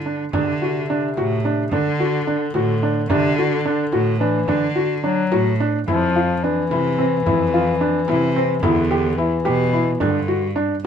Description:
contemporary instrumental, chamber music in an uneven meter; 217 BPM (eighths); 5/8; straight; A4 = 442 Hz
clear cello; bass; 0.0-10.7 s; E2 to D3; -23 LUFS; right 2 dB
felt-muted upright piano; arpeggios; 0.1-10.9 s; C4 to G4; -21 LUFS; equal
warm bass clarinet; second line; 0.3-10.9 s; C3 to F#3; -22 LUFS; left 5 dB
frame drum; percussion; 0.3-10.7 s; -27 LUFS; right 2 dB
little or no reverb; close, detailed microphones; -17 LUFS; side -8 dB against mid
0.3-10.9 A section
0.3 D7; 5.9 F5; 8.6 Em7; 10.0 G5

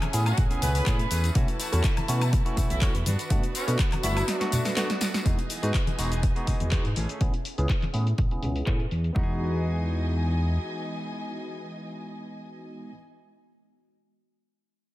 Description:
filtered disco house; 123 BPM; 4/4; swing 53% on 16ths; E major; A4 = 443 Hz
warm studio string section; sustained chords; 0.0-12.9 s; E3 to A5; -37 LUFS; equal; sidechain pumping, low-pass filter
direct-recorded clean electric guitar; riff; 0.0-13.0 s; E3 to G#4; -39 LUFS; right 2 dB; sidechain pumping, low-pass filter
house drum kit; drums; 0.0-9.1 s; handclaps, hi-hat, shaker, snare drum, woodblock; -32 LUFS; equal; low-pass filter on snare, sidechain pumping on hats, low-pass filter on hats, sidechain pumping on perc, low-pass filter on perc
congas and tambourine; percussion; 0.0-9.1 s; -34 LUFS; left 2 dB; sidechain pumping on perc, low-pass filter on perc
barky tine electric piano; accompaniment; 0.1-12.9 s; G#3 to G#4; -34 LUFS; equal; phaser, sidechain pumping, low-pass filter
fat analog bass; bass; 0.1-10.6 s; E1 to B2; -26 LUFS; equal; sidechain pumping, low-pass filter
clear horn section; melody; 0.3-4.5 s; C#4 to B4; -36 LUFS; equal; sidechain pumping, low-pass filter, ping-pong delay
electronic kick drum; drums; 0.4-9.3 s; -25 LUFS; equal; overdrive
light reverb, digital ambience; -24 LUFS; side -16 dB against mid
0.0-5.3 A section; 5.3-9.2 B section; 9.2-13.1 C section
drop 0.0-5.3; drum fill 4.3-5.3; filter sweep 5.3-9.2
0.0 Amaj7; 1.4 B7sus4; 3.1 Gmaj7; 5.3 Emaj7; 7.0 Amaj7; 9.2 Emaj7

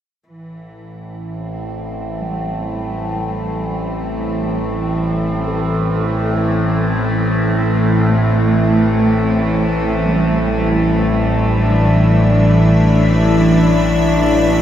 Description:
dark ambient drone; 46 BPM; 4/4; straight; A minor; A4 = 440 Hz
rich studio cello section; sustained chords; 0.3-14.6 s; E3 to D4; -18 LUFS; equal
overtone-sweeping drone; drone; 0.9-14.6 s; A1 to A2; -16 LUFS; equal; chorus, built-in reverb, phaser
gamelan-type bronze metallophone; arpeggios; 2.2-14.6 s; G3 to A4; -26 LUFS; right 2 dB
icy glass pad; texture; 11.7-14.6 s; E4 to E5; -22 LUFS; left 3 dB; chorus, built-in reverb
wet huge ambient reverb, RT60 8.2 s; dreamy mix soaked in reverb; -13 LUFS; side -10 dB against mid
0.3-14.6 A section
fade-in on cello section 0.3-14.6
0.3 A5

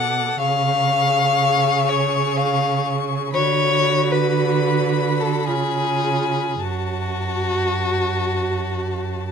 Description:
classical, slow romantic movement for string quartet; 50-62 BPM; 3/4; rubato; F# minor; A4 = 442 Hz
dark violin; melody; 0.0-9.3 s; A5 to D6; -28 LUFS; left 11 dB
rich violin; second line; 0.0-9.3 s; F#4 to F#5; -21 LUFS; left 5 dB
warm viola; accompaniment; 0.0-9.3 s; E#4 to A4; -26 LUFS; right 4 dB
warm cello; bass; 0.0-9.3 s; F#2 to D3; -23 LUFS; right 6 dB
light reverb; close, detailed microphones; -18 LUFS; side -6 dB against mid
0.0-9.3 A section
0.4 C#; 3.4 Bm/D; 5.5 C#7; 6.6 F#m

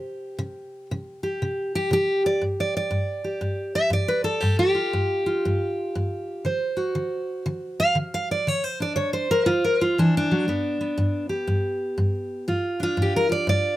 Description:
acoustic country blues, solo or duo; 119 BPM; 4/4; swing 63% on 8ths; G mixolydian; A4 = 440 Hz
fingerpicked steel-string acoustic guitar; solo; 0.0-13.8 s; G2 to F5; -22 LUFS; equal
light reverb; close, detailed microphones; -22 LUFS; side -15 dB against mid
0.0-13.8 A section
0.0 C5; 2.4 G5; 6.5 D7; 10.5 G7

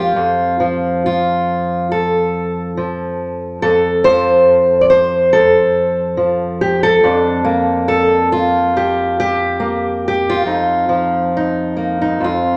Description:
folk, solo fingerstyle acoustic guitar; 70 BPM; 4/4; rubato; A4 = 440 Hz
fingerpicked steel-string acoustic guitar; solo; 0.0-12.6 s; F2 to D5; -15 LUFS; equal
moderate large studio reverb, RT60 1.0 s; -15 LUFS; mono
0.0-12.6 A section
0.2 N.C.; 7.0 Gmadd9/F; 10.5 Ebsus2/F

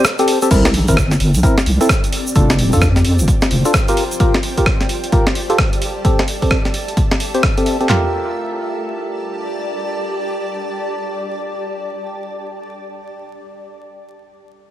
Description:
UK garage, two-step garage; 130 BPM; 4/4; swing 62% on 16ths; G dorian; A4 = 440 Hz
percussive organ stab; stabs; 0.0-12.6 s; C4 to C5; -19 LUFS; equal; chorus, dub echo
breakbeat sampler-style drum kit; drums; 0.0-7.9 s; crash cymbal, hi-hat, rim click, snare drum; -19 LUFS; equal; studio reverb
egg shaker; percussion; 0.0-4.2 s; -27 LUFS; right 3 dB
deep soft wobble bass; bass; 0.5-3.6 s; D1 to F2; -14 LUFS; equal; chorus, tube saturation
punchy analog drum machine; drums; 0.5-8.0 s; handclaps, kick drum, snare drum, toms; -16 LUFS; equal; studio reverb
granular cloud pad; texture; 1.7-12.3 s; C4 to A5; -25 LUFS; equal; built-in reverb, sidechain pumping
light reverb, digital ambience; vinyl crackle; -14 LUFS; side -13 dB against mid
0.5-7.9 A section; 7.9-11.6 B section
break 0.0-0.5; filter sweep on synth stab 0.5-7.9
0.0 Am7; 0.5 C7; 2.1 F6; 4.0 Gm7; 5.8 Am7; 7.9 Gm7

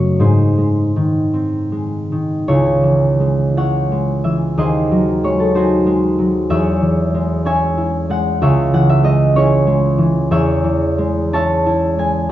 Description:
classical, solo harp piece; 50-65 BPM (dotted quarters); 6/8; rubato; C# minor; A4 = 440 Hz
concert harp; solo; 0.0-12.3 s; C#2 to A5; -13 LUFS; equal
wet recital hall reverb, RT60 1.7 s; dark, warm production, nothing above 7.5 kHz; -13 LUFS; side -13 dB against mid
0.0-2.5 A section; 2.5-12.3 B section
0.2 G#; 2.5 C#m; 4.6 G#7/D#; 6.5 C#m/E; 8.4 C#m; 10.3 C#m/E

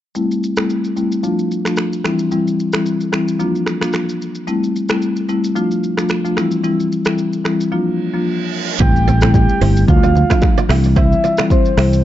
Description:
afrobeats; 111 BPM; 4/4; swing 55% on 16ths; A4 = 445 Hz
marimba with medium mallets; accompaniment; 0.2-12.0 s; E3 to F4; -17 LUFS; left 2 dB; low-pass filter
deep house drum kit; drums; 0.2-12.0 s; finger snaps, hi-hat, kick drum, rim click, shaker; -18 LUFS; equal; overdrive
reverse cymbal and impact; sound effects; 8.1-11.0 s; -25 LUFS; right 3 dB
soft octave-layered synth lead; melody; 8.8-12.0 s; C5 to G5; -19 LUFS; equal; chorus, phaser, digital delay
kora; riff; 8.8-11.9 s; C4 to E5; -24 LUFS; right 9 dB; digital delay
fingered electric bass; bass; 8.8-12.0 s; G1 to D2; -14 LUFS; equal
congas and bongos; percussion; 8.8-11.6 s; -23 LUFS; right 2 dB
digital ambience; dark, warm production, nothing above 7.6 kHz; -14 LUFS; side -12 dB against mid
0.2-8.8 A section; 8.8-12.0 B section
filter sweep on marimba 0.2-8.8; reverse cymbal 8.1-8.8; impact 8.8-11.0
0.2 Am7; 1.2 Dm; 2.0 C; 3.4 Bb; 4.5 Am7; 5.6 Dm; 6.4 C; 7.7 Bb; 8.8 Am7; 9.9 Dm; 10.7 C

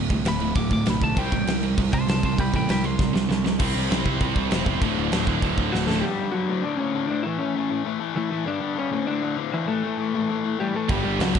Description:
punk rock; 197 BPM; 4/4; straight; D major from 6.0 s; A4 = 440 Hz
cranked stack guitar; riff; 0.0-11.4 s; D2 to C4; -27 LUFS; left 9 dB; overdrive
tight distorted guitar; riff; 0.0-6.0, 10.9-11.4 s; D2 to C4; -26 LUFS; right 17 dB; distortion
fuzz picked electric bass; bass; 0.0-6.0, 10.9-11.4 s; D1 to C#2; -28 LUFS; right 1 dB; overdrive
big rock drum kit; drums; 0.1-6.0, 10.9-11.4 s; crash cymbal, kick drum, snare drum; -25 LUFS; equal
lightly driven lead guitar; melody; 0.3-3.4, 5.7-11.4 s; E3 to D6; -27 LUFS; left 1 dB
light reverb; nothing above 10.8 kHz; -21 LUFS; side -7 dB against mid
0.0-3.6 A section; 3.6-6.0 B section; 6.0-11.4 C section
lead electric guitar solo 0.0-3.6; drum fill 3.0-3.6, 5.7-6.0
0.0 D5; 1.2 C5; 3.6 C; 4.8 D; 6.0 G5; 6.5 D; 7.2 A; 8.5 G5; 8.9 D5; 9.7 A5; 10.9 G5

